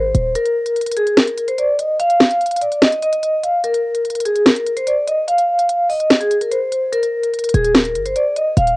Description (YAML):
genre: hip hop, trap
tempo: 146 BPM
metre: 4/4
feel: half-time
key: Eb major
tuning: A4 = 440 Hz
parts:
  - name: vibraphone with medium mallets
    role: melody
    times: 0.0-8.8 s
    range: Ab4 to F5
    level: -16 LUFS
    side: equal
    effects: low-pass filter
  - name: short 808-style bass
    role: bass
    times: 0.0-0.4, 7.5-8.8 s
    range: Eb1 to Ab1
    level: -18 LUFS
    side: equal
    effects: none
  - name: trap drum kit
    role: drums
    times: 0.1-8.8 s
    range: hi-hat, snare drum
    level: -15 LUFS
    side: equal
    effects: vintage 12-bit sampler grit, cassette tape
room: light reverb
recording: home recording on cassette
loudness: -14 LUFS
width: side -21 dB against mid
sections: 0.0-8.8 A section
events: kick muted 0.4-6.9, 6.9-7.3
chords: 0.4 N.C.; 6.9 Eb5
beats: | 0.35 0.76 1.17 1.58 | 2.00 2.41 2.82 3.23 | 3.64 4.05 4.46 4.87 | 5.28 5.69 6.11 6.51 | 6.93 7.34 7.75 8.16 | 8.57